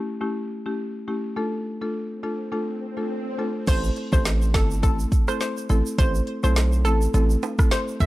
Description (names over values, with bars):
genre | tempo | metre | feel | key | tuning
dancehall | 104 BPM | 4/4 | swing 56% on 16ths | A minor | A4 = 440 Hz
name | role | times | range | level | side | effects
buzzing marimba with medium mallets | accompaniment | 0.0-8.1 s | A3 to A4 | -28 LUFS | left 1 dB | sidechain pumping, low-pass filter
swell | sound effects | 2.2-3.7 s | none | -36 LUFS | left 1 dB | none
hollow square pluck | melody | 3.7-8.1 s | A4 to E5 | -29 LUFS | equal | chorus, digital delay
hard-hitting 808-style bass | bass | 3.7-8.1 s | G1 to B1 | -21 LUFS | equal | none
deep house drum kit | drums | 3.7-8.1 s | crash cymbal, hi-hat, kick drum, rim click, snare drum | -22 LUFS | equal | none
egg shaker and timbales | percussion | 3.7-8.1 s | none | -37 LUFS | right 7 dB | none
room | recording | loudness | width
digital ambience | none | -21 LUFS | side -17 dB against mid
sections
0.0-3.7 A section; 3.7-8.1 B section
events
swell 2.2-3.7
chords
0.0 A7; 1.4 Dm; 3.7 Am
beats
0.21 0.79 | 1.37 1.95 2.52 3.10 | 3.68 4.25 4.83 5.41 | 5.98 6.56 7.14 7.71